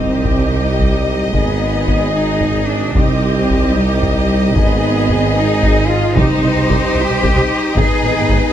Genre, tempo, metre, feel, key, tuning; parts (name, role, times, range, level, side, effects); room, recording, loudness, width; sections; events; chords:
cinematic, epic orchestral film score; 74 BPM (dotted quarters); 6/8; straight; C harmonic minor; A4 = 440 Hz
rich symphonic violin section; melody; 0.0-8.5 s; Eb5; -28 LUFS; left 2 dB
warm chamber violin section; second line; 0.0-8.5 s; Cb5 to Eb5; -23 LUFS; left 2 dB
rich symphonic viola section; accompaniment; 0.0-8.4 s; Eb4 to Ab4; -26 LUFS; right 1 dB
rich symphonic string section; sustained chords; 0.0-8.5 s; Cb4 to Eb5; -24 LUFS; left 2 dB
warm French horn section; sustained chords; 0.0-8.5 s; G3 to Eb4; -23 LUFS; left 4 dB
clear tuba; bass; 0.0-8.4 s; Ab1 to C2; -21 LUFS; right 4 dB
rich studio double bass section; bass; 0.0-8.4 s; Ab1 to C2; -20 LUFS; right 3 dB
rich symphonic cello section; bass; 0.0-8.5 s; G3 to Ab4; -19 LUFS; equal
impact; sound effects; 0.0-1.3 s; -30 LUFS; equal
taiko ensemble; drums; 0.3-8.5 s; -19 LUFS; equal
timpani; percussion; 6.2-6.9 s; C3; -22 LUFS; left 1 dB
light reverb; -12 LUFS; side -10 dB against mid
0.0-8.5 A section
impact 0.0-1.3
0.0 Cm; 1.3 Abm; 2.9 Cm; 4.6 Abm; 6.2 Cm; 7.8 Abm